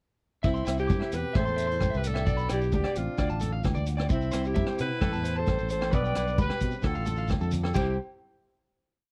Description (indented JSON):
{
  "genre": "highlife guitar band",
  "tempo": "131 BPM",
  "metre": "4/4",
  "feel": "straight",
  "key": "C major",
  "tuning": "A4 = 440 Hz",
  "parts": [
    { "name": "raspy alto saxophone", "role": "melody", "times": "0.4-8.0 s", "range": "E4 to D5", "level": "-34 LUFS", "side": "equal", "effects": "none" },
    { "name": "nylon-string guitar", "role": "accompaniment", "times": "0.4-8.0 s", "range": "G2 to B4", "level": "-40 LUFS", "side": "equal", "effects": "none" },
    { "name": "electric guitar at the edge of break-up", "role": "arpeggios", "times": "0.4-8.0 s", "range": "G4 to D6", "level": "-39 LUFS", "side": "equal", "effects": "slapback echo" },
    { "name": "fingered electric bass", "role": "bass", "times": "0.4-8.0 s", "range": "A1 to C3", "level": "-33 LUFS", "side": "equal", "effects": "none" },
    { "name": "vintage drum kit", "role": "drums", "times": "0.4-7.9 s", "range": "crash cymbal, hi-hat, kick drum, rim click", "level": "-32 LUFS", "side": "equal", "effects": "none" },
    { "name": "congas", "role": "percussion", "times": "0.4-8.0 s", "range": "none", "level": "-37 LUFS", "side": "equal", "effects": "none" },
    { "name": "shekere", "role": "percussion", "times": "0.4-8.0 s", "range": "none", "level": "-43 LUFS", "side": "equal", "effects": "none" },
    { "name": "clear alto saxophone", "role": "second line", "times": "0.5-8.0 s", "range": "C4 to B4", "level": "-41 LUFS", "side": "equal", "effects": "none" },
    { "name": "agogo bells", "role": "percussion", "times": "0.7-7.9 s", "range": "none", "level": "-44 LUFS", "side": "equal", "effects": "none" }
  ],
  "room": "small room ambience",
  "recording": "dry, close 1970s-style studio recording",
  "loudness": "-28 LUFS",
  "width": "mono",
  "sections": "0.4-7.8 A section; 7.8-9.1 final chord",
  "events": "none",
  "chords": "0.4 C; 1.4 Am; 2.3 Am11; 3.2 Dm; 4.1 C; 5.0 Am; 5.9 G/B; 6.8 Dm; 7.8 C"
}